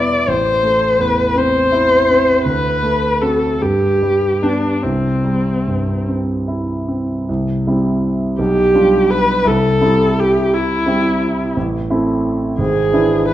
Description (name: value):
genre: classical, romantic duo for viola and grand piano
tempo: 47-58 BPM (dotted quarters)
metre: 6/8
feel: rubato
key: C major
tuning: A4 = 441 Hz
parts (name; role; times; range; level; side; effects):
- rich viola; melody; 0.0-13.3 s; C4 to D5; -15 LUFS; left 1 dB; none
- warm grand piano; accompaniment; 0.0-13.3 s; G#1 to F#4; -17 LUFS; right 1 dB; none
room: wet recital hall reverb, RT60 1.3 s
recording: dark, warm production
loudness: -13 LUFS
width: side -13 dB against mid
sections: 0.0-7.3 A section; 7.3-13.3 B section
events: none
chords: 0.3 Am; 2.5 D7; 3.6 G; 4.8 C; 8.4 G7/B; 9.5 C; 11.6 Am; 12.6 E7/G#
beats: | 0.28 1.36 | 2.47 3.60 | 4.82 6.07 | 7.28 8.39 | 9.47 10.52 | 11.56 12.59